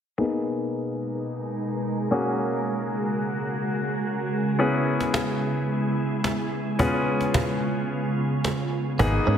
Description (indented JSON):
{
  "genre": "dance-pop",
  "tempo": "109 BPM",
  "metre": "4/4",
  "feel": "straight",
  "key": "G# minor",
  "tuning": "A4 = 440 Hz",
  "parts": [
    { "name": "clear baby grand piano", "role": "accompaniment", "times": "0.2-9.4 s", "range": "A#3 to G#4", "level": "-27 LUFS", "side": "left 2 dB", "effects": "low-pass filter, slapback echo" },
    { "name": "glassy FM pad", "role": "sustained chords", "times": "0.5-9.4 s", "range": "B2 to A#4", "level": "-26 LUFS", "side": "right 1 dB", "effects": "ensemble chorus, built-in reverb, low-pass filter" },
    { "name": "cajon", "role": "drums", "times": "5.0-9.1 s", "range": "none", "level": "-28 LUFS", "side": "equal", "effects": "none" },
    { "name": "direct-recorded clean electric guitar", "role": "riff", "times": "9.0-9.4 s", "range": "A#3 to C#4", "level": "-28 LUFS", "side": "right 6 dB", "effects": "ensemble chorus" },
    { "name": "vintage muted fingered electric bass", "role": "bass", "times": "9.0-9.4 s", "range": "G#1 to G#2", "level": "-22 LUFS", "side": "equal", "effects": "none" }
  ],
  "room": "wet lush hall reverb, RT60 2.1 s",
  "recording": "big arena sound",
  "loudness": "-23 LUFS",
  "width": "side -8 dB against mid",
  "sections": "0.2-9.0 A section",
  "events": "filter sweep 0.2-9.0; break 7.9-9.0",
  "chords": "0.2 G#madd9; 2.1 F#add9; 4.6 E6; 6.8 C#7"
}